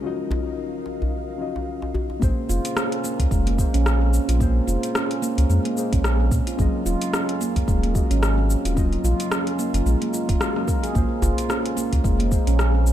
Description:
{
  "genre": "organic downtempo",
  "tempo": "110 BPM",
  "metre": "4/4",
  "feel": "swing 57% on 16ths",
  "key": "Bb minor",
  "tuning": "A4 = 441 Hz",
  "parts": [
    { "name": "muted felt-like synth keys", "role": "accompaniment", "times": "0.0-12.9 s", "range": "Gb3 to F5", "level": "-29 LUFS", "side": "left 4 dB", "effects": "chorus, sidechain pumping, digital delay" },
    { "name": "ethereal airy pad", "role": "sustained chords", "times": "0.0-2.2 s", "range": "Eb4 to F5", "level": "-36 LUFS", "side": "equal", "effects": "ensemble chorus, built-in reverb, vintage 12-bit sampler grit, sidechain pumping" },
    { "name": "djembe", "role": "percussion", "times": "0.3-2.2, 11.2-12.9 s", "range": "none", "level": "-28 LUFS", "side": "equal", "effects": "none" },
    { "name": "handpan", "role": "arpeggios", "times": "2.2-12.9 s", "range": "Ab3 to Bb4", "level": "-26 LUFS", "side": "right 4 dB", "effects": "digital delay" },
    { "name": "warm sub bass", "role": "bass", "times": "2.2-12.9 s", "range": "Eb1 to Bb2", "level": "-20 LUFS", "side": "equal", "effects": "sidechain pumping" },
    { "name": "deep house drum kit", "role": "drums", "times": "2.2-12.9 s", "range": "hi-hat, rim click, shaker", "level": "-28 LUFS", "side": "left 1 dB", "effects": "overdrive" },
    { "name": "electronic kick drum", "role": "drums", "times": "2.2-12.4 s", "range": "none", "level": "-23 LUFS", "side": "equal", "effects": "none" }
  ],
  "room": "little or no reverb",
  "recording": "dark, warm production",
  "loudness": "-20 LUFS",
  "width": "side -12 dB against mid",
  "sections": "0.0-2.2 A section; 2.2-12.9 B section",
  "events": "filter sweep on synth keys 0.0-2.2",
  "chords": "0.0 Ebm9; 2.2 Bbm9; 6.6 Ab7sus4; 8.8 Ebm9; 11.0 Bbm9"
}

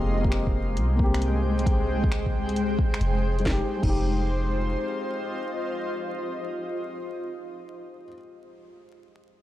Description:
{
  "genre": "future garage",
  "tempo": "134 BPM",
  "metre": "4/4",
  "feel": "swing 67% on 16ths",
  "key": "F minor",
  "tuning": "A4 = 441 Hz",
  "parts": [
    { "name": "felt-muted upright piano", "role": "accompaniment", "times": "0.0-9.4 s", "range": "Ab3 to G4", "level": "-33 LUFS", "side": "left 2 dB", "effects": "sidechain pumping, tape echo" },
    { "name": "granular cloud pad", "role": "sustained chords", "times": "0.0-7.7 s", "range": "Ab3 to G5", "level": "-30 LUFS", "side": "left 1 dB", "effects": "built-in reverb, sidechain pumping" },
    { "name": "soft 808-style bass", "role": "bass", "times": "0.0-4.8 s", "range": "F1 to C2", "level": "-26 LUFS", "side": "equal", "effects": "sidechain pumping" },
    { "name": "electronic kick drum", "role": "drums", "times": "0.2-3.9 s", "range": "none", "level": "-25 LUFS", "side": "equal", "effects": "none" },
    { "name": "garage drum kit", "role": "drums", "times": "0.3-3.9 s", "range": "crash cymbal, finger snaps, hi-hat, snare drum", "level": "-34 LUFS", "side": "equal", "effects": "none" }
  ],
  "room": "digital ambience",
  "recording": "dry, gritty hardware recording, vinyl crackle",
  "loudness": "-24 LUFS",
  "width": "side -14 dB against mid",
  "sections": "0.0-3.5 A section; 3.5-7.0 B section",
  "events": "none",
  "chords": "0.0 Abmaj7/F; 3.5 Fm7"
}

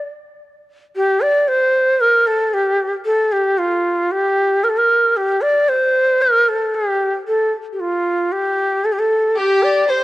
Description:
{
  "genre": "arabic",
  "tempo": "114 BPM",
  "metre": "4/4",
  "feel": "straight",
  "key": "unclear",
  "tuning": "A4 = 440 Hz",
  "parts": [
    { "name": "breathy bright ney", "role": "melody", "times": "0.0-10.0 s", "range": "F4 to D5", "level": "-14 LUFS", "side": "equal", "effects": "cassette tape" },
    { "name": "clear chamber violin section", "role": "second line", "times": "9.4-10.0 s", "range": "G4 to C5", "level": "-18 LUFS", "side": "equal", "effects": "cassette tape" }
  ],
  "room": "light reverb, small room ambience",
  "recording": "home recording on cassette",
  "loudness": "-14 LUFS",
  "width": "side -17 dB against mid",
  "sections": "1.0-10.0 A section",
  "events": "none",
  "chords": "none"
}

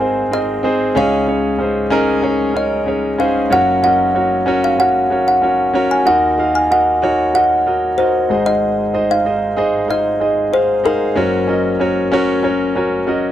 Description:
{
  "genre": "pop",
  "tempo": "94 BPM",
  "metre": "4/4",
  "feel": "straight",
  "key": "Gb lydian",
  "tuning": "A4 = 438 Hz",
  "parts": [
    { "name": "kalimba", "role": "melody", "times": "0.0-13.0 s", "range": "Bb4 to Ab5", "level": "-16 LUFS", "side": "equal", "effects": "none" },
    { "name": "clear grand piano", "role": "accompaniment", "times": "0.0-13.3 s", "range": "Gb1 to F5", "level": "-16 LUFS", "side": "equal", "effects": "none" }
  ],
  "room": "light reverb",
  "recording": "dry, close 1970s-style studio recording",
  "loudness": "-13 LUFS",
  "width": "side -11 dB against mid",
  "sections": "0.0-13.3 A section",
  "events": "none",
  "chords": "0.0 Ab; 1.0 Dbsus2; 3.5 Gb; 6.1 Ebm; 8.3 Ab; 11.2 Gb"
}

